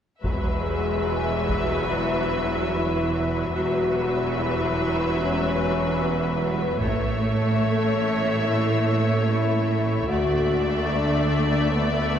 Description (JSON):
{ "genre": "cinematic, epic orchestral film score", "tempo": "73 BPM (dotted quarters)", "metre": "12/8", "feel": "straight", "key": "E mixolydian", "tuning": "A4 = 440 Hz", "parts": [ { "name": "warm symphonic violin section", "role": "melody", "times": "0.2-12.2 s", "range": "E5", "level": "-31 LUFS", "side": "left 4 dB", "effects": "none" }, { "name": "warm symphonic violin section", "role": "second line", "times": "0.2-12.2 s", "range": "B4 to D5", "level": "-30 LUFS", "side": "left 2 dB", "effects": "none" }, { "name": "rich symphonic viola section", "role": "accompaniment", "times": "0.2-12.2 s", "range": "F#3 to A3", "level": "-29 LUFS", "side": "right 2 dB", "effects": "none" }, { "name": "mellow French horn section", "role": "sustained chords", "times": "0.2-12.2 s", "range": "G#3 to F#4", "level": "-27 LUFS", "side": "left 3 dB", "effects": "none" }, { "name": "rich studio cello section", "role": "bass", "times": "0.2-12.2 s", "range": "D2 to A2", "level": "-28 LUFS", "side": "right 3 dB", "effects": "none" }, { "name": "rich symphonic double bass section", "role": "bass", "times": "0.2-12.2 s", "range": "E1 to D2", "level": "-28 LUFS", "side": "right 2 dB", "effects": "none" }, { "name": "taiko ensemble", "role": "drums", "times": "0.2-1.7, 6.8-7.9 s", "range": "none", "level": "-29 LUFS", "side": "equal", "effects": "none" } ], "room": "wet scoring stage reverb, RT60 1.7 s", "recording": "heard from further back in the room", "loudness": "-21 LUFS", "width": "side -8 dB against mid", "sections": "0.2-12.2 A section", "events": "none", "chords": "0.2 Eadd9; 6.8 A; 10.1 Dadd9" }